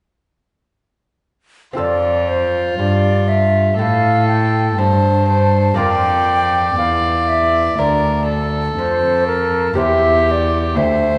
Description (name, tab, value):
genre	classical, baroque-style sonata movement with continuo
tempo	60 BPM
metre	4/4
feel	straight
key	F major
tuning	A4 = 441 Hz
part	lute	accompaniment	1.7-11.2 s	D2 to C5	-28 LUFS	equal	none
part	wooden flute	melody	1.8-11.2 s	Bb4 to A5	-20 LUFS	equal	none
part	warm violin	second line	1.8-11.2 s	F4 to D5	-22 LUFS	equal	none
part	rich cello	bass	1.8-11.2 s	D2 to A2	-21 LUFS	equal	none
room	wet recital hall reverb, RT60 1.5 s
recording	recorded in a church or concert hall, nothing above 10.7 kHz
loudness	-16 LUFS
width	mono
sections	1.8-11.2 A section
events	none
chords	1.8 F; 5.8 Bb; 9.8 C7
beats	| 1.78 2.79 3.79 4.79 | 5.79 6.79 7.79 8.79 | 9.78 10.77